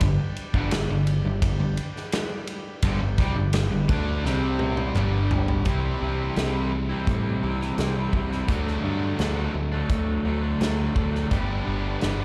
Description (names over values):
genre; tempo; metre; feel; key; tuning
classic rock; 85 BPM; 4/4; straight; G major; A4 = 439 Hz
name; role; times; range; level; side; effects
tonewheel organ; sustained chords; 0.0-5.7 s; D4 to G5; -44 LUFS; equal; slow rotary speaker, overdrive
biting overdriven guitar; riff; 0.0-12.2 s; G2 to G4; -31 LUFS; equal; slapback echo
crunchy overdriven guitar; riff; 0.0-12.2 s; G2 to E4; -32 LUFS; equal; slapback echo
modern bright picked electric bass; bass; 0.0-12.2 s; G1 to A2; -30 LUFS; equal; none
big rock drum kit; drums; 0.0-12.2 s; hi-hat, kick drum, ride cymbal, snare drum, toms; -30 LUFS; equal; none
group handclap; percussion; 0.7-5.1 s; none; -44 LUFS; equal; none
room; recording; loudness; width
light reverb, studio ambience; live gig heard through the venue's PA, club reverb; -25 LUFS; mono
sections
0.0-5.7 A section; 5.7-12.2 B section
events
drum fill 4.2-5.7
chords
0.0 G; 4.2 C5; 5.0 G; 5.7 C; 8.5 D; 11.3 G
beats
| 0.02 0.73 1.43 2.14 | 2.84 3.54 4.25 4.96 | 5.66 6.37 7.07 7.78 | 8.49 9.19 9.90 10.61 | 11.31 12.02